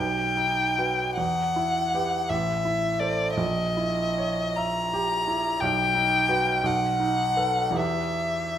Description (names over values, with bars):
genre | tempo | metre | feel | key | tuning
classical, romantic duo for violin and grand piano | 55 BPM (dotted quarters) | 6/8 | uneven beats, rubato | unclear | A4 = 444 Hz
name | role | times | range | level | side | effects
warm violin | melody | 0.0-8.6 s | D5 to A#5 | -24 LUFS | left 2 dB | none
clear concert grand piano | accompaniment | 0.0-8.6 s | A1 to E5 | -27 LUFS | right 3 dB | none
room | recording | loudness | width
wet recital hall reverb, RT60 1.4 s | none | -22 LUFS | side -10 dB against mid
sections
0.0-8.6 A section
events
none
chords
0.0 B; 1.2 Em; 2.3 Am; 3.4 A#dim7; 5.6 B; 6.6 B7; 7.8 Em